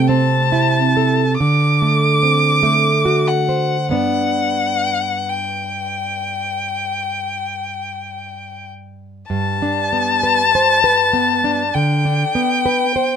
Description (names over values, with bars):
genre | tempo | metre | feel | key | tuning
romantic duo for violin and classical guitar | 44-50 BPM | 4/4 | rubato | G major | A4 = 440 Hz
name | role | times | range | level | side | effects
warm violin | melody | 0.0-13.2 s | F#5 to D6 | -17 LUFS | left 3 dB | none
nylon-string guitar | accompaniment | 0.0-13.2 s | G2 to C5 | -18 LUFS | right 2 dB | none
room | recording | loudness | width
light reverb | minimal, uncompressed stereo recording | -15 LUFS | side -8 dB against mid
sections
0.0-9.3 A section; 9.3-13.2 B section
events
none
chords
0.0 Am/C; 1.4 D7; 3.9 G